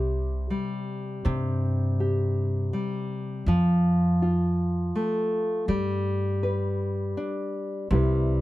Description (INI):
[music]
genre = acoustic folk duo or small band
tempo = 81 BPM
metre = 3/4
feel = straight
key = unclear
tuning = A4 = 440 Hz
[part]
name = nylon-string guitar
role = accompaniment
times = 0.0-8.4 s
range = C3 to B4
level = -26 LUFS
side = equal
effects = none
[part]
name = upright bass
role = bass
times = 0.0-8.4 s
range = C2 to G2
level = -26 LUFS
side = equal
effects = none
[sound]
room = moderate studio reverb, RT60 0.6 s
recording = dark, warm production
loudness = -24 LUFS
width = side -16 dB against mid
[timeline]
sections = 0.0-8.4 A section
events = none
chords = 0.0 C5; 3.5 F; 5.7 G; 7.9 Cmaj7